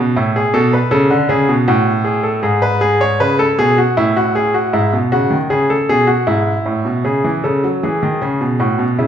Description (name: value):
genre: classical, baroque-style two-part invention for grand piano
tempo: 78 BPM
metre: 3/4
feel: straight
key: unclear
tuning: A4 = 440 Hz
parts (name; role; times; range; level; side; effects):
- clear grand piano; solo; 0.0-9.1 s; G#2 to C#5; -13 LUFS; equal; none
room: wet recital hall reverb, RT60 1.6 s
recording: minimal, uncompressed stereo recording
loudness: -13 LUFS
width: side -9 dB against mid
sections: 0.0-7.0 A section; 7.0-9.1 B section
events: none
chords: 0.2 A; 1.7 F#madd9/A; 2.4 G#madd11; 4.0 A5; 4.7 E/G#; 7.0 C#m